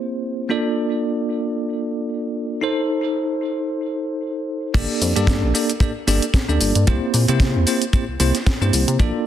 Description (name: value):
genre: nu-disco, nu disco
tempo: 113 BPM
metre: 4/4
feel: swing 56% on 16ths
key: G minor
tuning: A4 = 445 Hz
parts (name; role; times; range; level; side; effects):
- bell-like tine electric piano; accompaniment; 0.0-9.3 s; Bb3 to D5; -21 LUFS; equal; fast stereo tremolo, sidechain pumping, tape echo
- chorused synth bass; bass; 4.7-9.1 s; G1 to C3; -19 LUFS; equal; sidechain pumping
- kick drum; drums; 4.7-9.1 s; none; -17 LUFS; equal; none
- house drum kit; drums; 4.8-9.1 s; crash cymbal, hi-hat, shaker, snare drum; -24 LUFS; equal; overdrive
room: light reverb, digital ambience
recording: dense, heavily limited modern master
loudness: -18 LUFS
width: side -11 dB against mid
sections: 0.0-4.8 A section; 4.8-9.3 B section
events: drop 4.8-9.3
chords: 0.0 C7; 0.5 Bbmaj7; 2.6 Adim; 4.8 Gmadd9; 6.9 C7